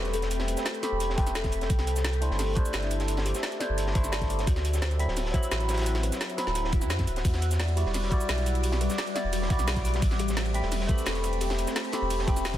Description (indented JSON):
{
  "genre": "liquid drum and bass",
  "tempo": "173 BPM",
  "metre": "4/4",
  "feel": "straight",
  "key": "A dorian",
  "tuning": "A4 = 439 Hz",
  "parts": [
    { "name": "barky tine electric piano", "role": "accompaniment", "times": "0.0-12.6 s", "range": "F#3 to B5", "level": "-33 LUFS", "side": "equal", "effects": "phaser, tape echo" },
    { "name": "shimmering ambient pad", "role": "sustained chords", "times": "0.0-12.6 s", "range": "G3 to D6", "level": "-36 LUFS", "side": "equal", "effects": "chorus, built-in reverb, phaser, sidechain pumping" },
    { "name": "warm sub bass", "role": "bass", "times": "0.0-12.6 s", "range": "D1 to F#2", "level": "-29 LUFS", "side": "equal", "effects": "none" },
    { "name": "kalimba", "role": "arpeggios", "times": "0.1-12.6 s", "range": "F#4 to G5", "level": "-36 LUFS", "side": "left 4 dB", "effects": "dub echo" },
    { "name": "crunchy breakbeat drum kit", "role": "drums", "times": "0.1-12.6 s", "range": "hi-hat, snare drum", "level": "-39 LUFS", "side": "equal", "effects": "high-pass filter on hats, high-pass filter on snare, high-pass filter on room" },
    { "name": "garage drum kit", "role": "drums", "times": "0.1-12.6 s", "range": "cabasa, hi-hat, ride cymbal, snare drum", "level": "-34 LUFS", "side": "equal", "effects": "overdrive" },
    { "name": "electronic kick drum", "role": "drums", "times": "1.2-12.6 s", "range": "none", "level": "-27 LUFS", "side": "equal", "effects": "overdrive" },
    { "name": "swell", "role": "sound effects", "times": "6.7-7.2 s", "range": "none", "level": "-45 LUFS", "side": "right 6 dB", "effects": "none" }
  ],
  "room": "small room reverb",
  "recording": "dense, heavily limited modern master",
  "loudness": "-25 LUFS",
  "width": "side -12 dB against mid",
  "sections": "0.0-12.6 A section",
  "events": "swell 6.7-7.2",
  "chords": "0.0 Am9; 1.7 C69; 4.5 D13; 7.2 Em9; 10.0 Am9",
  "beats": "| 0.31 0.66 1.00 1.35 | 1.70 2.04 2.39 2.74 | 3.08 3.43 3.78 4.13 | 4.47 4.82 5.17 5.51 | 5.86 6.21 6.55 6.90 | 7.25 7.59 7.94 8.29 | 8.63 8.98 9.33 9.68 | 10.02 10.37 10.71 11.06 | 11.41 11.76 12.10 12.45"
}